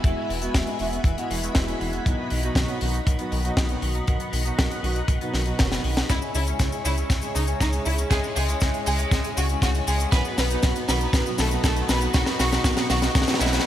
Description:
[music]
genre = italo disco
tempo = 119 BPM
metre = 4/4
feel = straight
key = unclear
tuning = A4 = 438 Hz
[part]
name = string machine, full ensemble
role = sustained chords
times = 0.0-13.7 s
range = E4 to C#6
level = -33 LUFS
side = equal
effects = phaser, ensemble chorus, vintage 12-bit sampler grit
[part]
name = clean electric guitar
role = arpeggios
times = 0.0-13.6 s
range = C#3 to B4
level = -33 LUFS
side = left 4 dB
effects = lush chorus, low-pass filter, digital delay
[part]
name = analog synth brass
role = stabs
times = 0.0-13.7 s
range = B2 to G#4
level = -32 LUFS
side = right 2 dB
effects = chorus, digital delay
[part]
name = round analog bass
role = bass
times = 0.0-13.6 s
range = E1 to C#2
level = -27 LUFS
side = equal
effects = tube saturation
[part]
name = kick drum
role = drums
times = 0.0-13.3 s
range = none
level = -24 LUFS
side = equal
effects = none
[part]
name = tight funk drum kit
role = drums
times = 0.0-13.7 s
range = cabasa, hi-hat, snare drum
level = -27 LUFS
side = left 1 dB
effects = none
[part]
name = rich studio violin section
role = melody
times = 6.1-13.5 s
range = G#3 to B4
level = -28 LUFS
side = right 1 dB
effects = digital delay
[sound]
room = moderate lush hall reverb, RT60 1.8 s, small room reverb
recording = bright 1980s-style digital production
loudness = -21 LUFS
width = side -12 dB against mid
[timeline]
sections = 0.0-6.1 A section; 6.1-13.7 B section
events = drum fill 5.7-6.1, 6.1-13.7; filter sweep on clean electric guitar 6.1-13.7; filter sweep on analog polysynth 6.1-13.7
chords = 0.0 Eadd9; 2.1 B; 6.1 C#m; 10.1 B

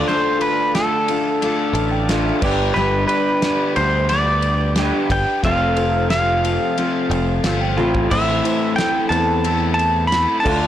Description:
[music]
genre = folk rock and heartland rock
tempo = 90 BPM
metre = 4/4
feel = straight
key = unclear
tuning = A4 = 439 Hz
[part]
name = pedal steel guitar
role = melody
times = 0.0-10.7 s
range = A4 to B5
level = -20 LUFS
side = right 1 dB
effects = none
[part]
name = picked steel-string acoustic guitar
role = accompaniment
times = 0.0-10.7 s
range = F2 to B4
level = -24 LUFS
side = left 5 dB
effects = none
[part]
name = reed electric piano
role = accompaniment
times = 0.0-10.7 s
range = E4 to B5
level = -29 LUFS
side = right 5 dB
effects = phaser
[part]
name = tonewheel organ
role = sustained chords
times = 0.0-10.7 s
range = C4 to D5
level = -33 LUFS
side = right 1 dB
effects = none
[part]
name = electric guitar through a small old amp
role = riff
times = 0.0-10.7 s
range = F2 to G4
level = -23 LUFS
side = equal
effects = none
[part]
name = damped 70s drum kit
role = drums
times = 0.4-10.6 s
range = crash cymbal, kick drum, ride cymbal, snare drum, toms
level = -25 LUFS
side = left 1 dB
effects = none
[part]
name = picked electric bass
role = bass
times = 1.7-10.7 s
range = F1 to E2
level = -21 LUFS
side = equal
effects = none
[sound]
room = light reverb, studio reverb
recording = blown-out, overdriven recording, overdrive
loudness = -16 LUFS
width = side -11 dB against mid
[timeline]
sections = 0.0-10.7 A section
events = reed electric piano fill 1.4-2.8, 7.1-8.1; drum fill 7.8-8.1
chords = 0.0 Dm; 2.4 G; 5.4 F; 8.1 Am

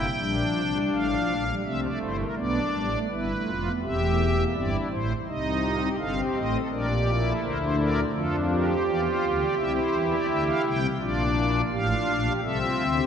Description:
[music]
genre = classical, baroque-style 4-part fugue for pipe organ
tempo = 83 BPM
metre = 4/4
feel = straight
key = Bb major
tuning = A4 = 440 Hz
[part]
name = pipe organ, strings celeste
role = solo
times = 0.0-13.1 s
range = E1 to G5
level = -23 LUFS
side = equal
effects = none
[sound]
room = wet church reverb, RT60 2.5 s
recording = none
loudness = -23 LUFS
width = side -8 dB against mid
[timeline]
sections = 0.0-2.4 A section; 2.4-13.1 B section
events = none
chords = 0.0 C7(no3); 0.9 F/A; 2.4 G7; 3.8 C/E; 5.3 F7/C; 6.7 Bb; 8.1 Dm/F; 9.6 C; 11.0 Bb; 12.4 Am/C

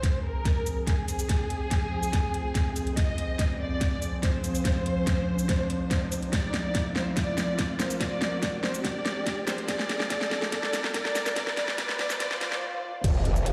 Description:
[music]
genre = heavy wobble dubstep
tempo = 143 BPM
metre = 4/4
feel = half-time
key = unclear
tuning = A4 = 442 Hz
[part]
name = dark studio violin section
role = melody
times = 0.0-12.6 s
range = Ab4 to Eb5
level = -35 LUFS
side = equal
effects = digital delay
[part]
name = evolving wavetable pad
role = sustained chords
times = 0.0-13.5 s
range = F2 to C5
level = -37 LUFS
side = equal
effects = chorus, built-in reverb, sidechain pumping
[part]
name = dubstep drum kit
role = drums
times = 0.0-13.5 s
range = crash cymbal, hi-hat, shaker, snare drum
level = -33 LUFS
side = equal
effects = none
[part]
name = electronic kick drum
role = drums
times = 0.0-13.1 s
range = none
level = -30 LUFS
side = equal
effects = none
[part]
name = riser, swell and impact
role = sound effects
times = 0.0-13.5 s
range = none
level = -39 LUFS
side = equal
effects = none
[part]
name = growl bass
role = bass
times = 13.0-13.5 s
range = F1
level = -28 LUFS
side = equal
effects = distortion, chorus, overdrive
[sound]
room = moderate lush hall reverb, RT60 1.7 s, digital ambience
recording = played on a big sound system in a bare room, large studio reverb, high-pass filter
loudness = -28 LUFS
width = mono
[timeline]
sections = 0.0-13.0 A section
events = build-up 0.0-13.0; drum fill 0.0-12.6; riser 0.0-12.6; filter sweep on ambient pad 0.0-13.0; filter sweep 0.0-13.0; swell 12.2-13.0; stop 12.6-13.0; impact 13.0-13.5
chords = 0.0 Fm; 6.3 Bbadd9

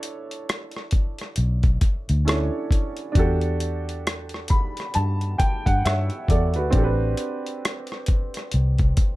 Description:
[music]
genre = R&B, neo-soul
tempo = 67 BPM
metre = 4/4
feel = swing 60% on 16ths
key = unclear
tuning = A4 = 440 Hz
[part]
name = warm upright piano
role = accompaniment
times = 0.0-9.2 s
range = C4 to B5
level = -27 LUFS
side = right 2 dB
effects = none
[part]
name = boom bap sampler-style drum kit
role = drums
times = 0.0-9.2 s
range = hi-hat, kick drum, rim click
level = -22 LUFS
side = equal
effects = none
[part]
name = vintage muted fingered electric bass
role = bass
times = 1.4-8.9 s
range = A1 to G2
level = -22 LUFS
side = equal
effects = none
[sound]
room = little or no reverb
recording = none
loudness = -21 LUFS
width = side -18 dB against mid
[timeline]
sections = 0.0-9.2 A section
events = upright piano fill 4.1-6.7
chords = 0.0 Bm11; 3.2 Em11; 6.7 Am11

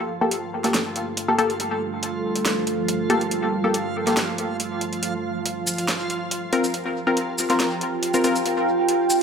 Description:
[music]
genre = deep dubstep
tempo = 140 BPM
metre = 4/4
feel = swing 53% on 16ths, half-time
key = G minor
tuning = A4 = 440 Hz
[part]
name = deep dark ambient pad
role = sustained chords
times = 0.6-9.2 s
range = G3 to G5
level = -26 LUFS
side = right 2 dB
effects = chorus, built-in reverb
[part]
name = backwards swelling texture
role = texture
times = 0.0-9.2 s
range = F3 to F4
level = -30 LUFS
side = right 3 dB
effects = built-in reverb
[part]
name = filtered dub chord stab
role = stabs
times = 0.2-8.4 s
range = Bb3 to Bb4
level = -23 LUFS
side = left 2 dB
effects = chorus, dub echo
[part]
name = deep house drum kit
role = drums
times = 0.3-9.2 s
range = hi-hat, shaker, snare drum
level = -26 LUFS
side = right 1 dB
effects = high-pass filter on hats, small room reverb, high-pass filter on snare, high-pass filter on perc
[sound]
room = wet echo chamber reverb, RT60 1.4 s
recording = echo-heavy mix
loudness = -21 LUFS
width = side -6 dB against mid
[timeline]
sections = 0.0-9.2 A section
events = build-up 0.0-9.2; filter sweep on ambient pad 0.0-9.2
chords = 0.0 Gmadd9; 5.0 Fsus4

